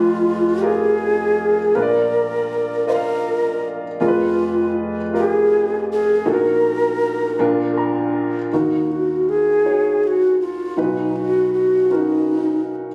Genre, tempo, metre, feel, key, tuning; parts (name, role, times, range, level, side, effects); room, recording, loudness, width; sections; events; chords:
gospel; 53 BPM (dotted quarters); 6/8; straight; Eb minor; A4 = 440 Hz
breathy mellow round clay ocarina; melody; 0.0-12.8 s; D#4 to C5; -20 LUFS; equal
dark upright piano; accompaniment; 0.0-12.9 s; F1 to Bb5; -24 LUFS; equal
moderate scoring stage reverb, RT60 1.5 s; recorded on a phone in the room, club reverb; -19 LUFS; mono
0.0-8.5 A section; 8.5-12.9 B section
upright piano fill 7.4-8.5
0.0 Fdim; 1.7 Bb; 4.0 Fdim; 6.3 Ebm/Bb; 7.4 Bb; 8.5 Ebm; 10.8 B